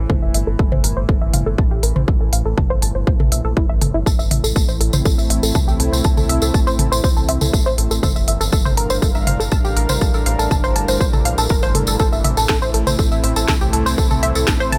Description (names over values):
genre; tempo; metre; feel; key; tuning
melodic techno; 121 BPM; 4/4; straight; A phrygian; A4 = 442 Hz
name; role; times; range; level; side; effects
tight sequenced synth; arpeggios; 0.0-14.8 s; E4 to A5; -25 LUFS; equal; chorus, phaser, sidechain pumping, delay
round analog bass; bass; 0.0-14.8 s; F1 to C2; -24 LUFS; equal; sidechain pumping
analog drone; drone; 0.0-14.8 s; A2 to E3; -32 LUFS; equal; chorus, sidechain pumping
electronic kick drum; drums; 0.1-14.6 s; none; -20 LUFS; equal; none
techno drum kit; drums; 0.1-14.8 s; hi-hat, snare drum, toms; -25 LUFS; equal; none
lush unison pad; sustained chords; 4.5-14.8 s; G3 to F5; -28 LUFS; equal; chorus, sidechain pumping
tambourine; percussion; 4.1-14.7 s; none; -28 LUFS; equal; none
room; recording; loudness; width
little or no reverb; none; -17 LUFS; mono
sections
0.0-14.8 A section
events
filter sweep on synth arpeggio sound 0.0-14.8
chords
0.1 Gm; 4.1 Am; 8.0 Gm7; 12.0 Am